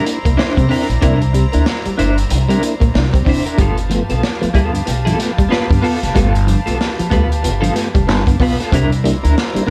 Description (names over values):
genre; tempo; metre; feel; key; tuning
funk; 94 BPM; 4/4; swing 60% on 16ths; G mixolydian; A4 = 439 Hz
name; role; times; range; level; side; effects
semi-hollow electric guitar; accompaniment; 0.0-9.7 s; B3 to C5; -24 LUFS; equal; tremolo
warm studio string section; sustained chords; 0.0-9.7 s; E4 to Bb5; -29 LUFS; equal; none
clean electric guitar; riff; 0.1-9.7 s; F3 to C4; -25 LUFS; equal; none
mellow tonewheel organ; stabs; 0.1-9.6 s; G2 to F4; -24 LUFS; equal; overdrive, chorus vibrato, slow rotary speaker
crunchy breakbeat drum kit; drums; 0.1-9.7 s; hi-hat, kick drum, snare drum; -21 LUFS; equal; none
upright bass; bass; 0.3-9.6 s; F1 to C3; -19 LUFS; equal; none
room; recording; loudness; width
small room ambience; none; -15 LUFS; mono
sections
0.0-9.7 A section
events
none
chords
0.0 C9; 3.6 G9; 8.7 C9